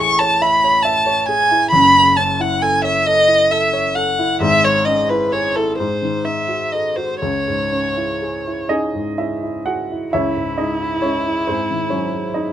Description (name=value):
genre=classical, romantic duo for violin and grand piano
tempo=40-47 BPM (dotted quarters)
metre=6/8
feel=rubato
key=C# minor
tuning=A4 = 440 Hz
part: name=dark violin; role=melody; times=0.0-12.5 s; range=E4 to C#6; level=-16 LUFS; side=equal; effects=none
part: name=dark baby grand piano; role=accompaniment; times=0.0-12.5 s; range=F#1 to F#5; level=-20 LUFS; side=equal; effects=none
room=light reverb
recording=close, detailed microphones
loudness=-15 LUFS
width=side -11 dB against mid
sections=0.0-10.1 A section; 10.1-12.5 A section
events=none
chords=0.0 Amaj7; 1.7 F#m7; 4.4 C#m/G#; 5.8 G#5; 7.2 C#m; 11.5 G#7